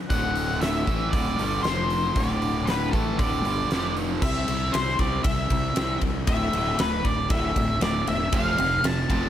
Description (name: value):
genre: classic rock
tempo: 117 BPM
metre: 4/4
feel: straight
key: unclear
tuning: A4 = 440 Hz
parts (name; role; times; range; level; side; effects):
- octave-fuzz lead guitar; melody; 0.1-9.3 s; A4 to A5; -27 LUFS; equal; distortion
- distorted electric guitar; riff; 0.1-4.2, 8.3-9.3 s; D2 to A3; -31 LUFS; right 8 dB; distortion
- overdriven semi-hollow guitar; riff; 0.1-9.3 s; D2 to C4; -31 LUFS; left 7 dB; none
- fuzz fingered electric bass; bass; 0.1-9.3 s; D1 to C2; -28 LUFS; equal; overdrive
- huge arena drum kit; drums; 0.1-9.2 s; crash cymbal, hi-hat, kick drum, ride cymbal, snare drum; -27 LUFS; equal; none
room: light reverb, studio ambience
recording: none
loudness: -22 LUFS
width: side -11 dB against mid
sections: 0.0-4.2 A section; 4.2-9.3 B section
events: none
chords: 0.0 D; 1.7 F5; 2.2 D5; 3.7 F5; 4.2 C; 6.3 Dsus2; 8.3 F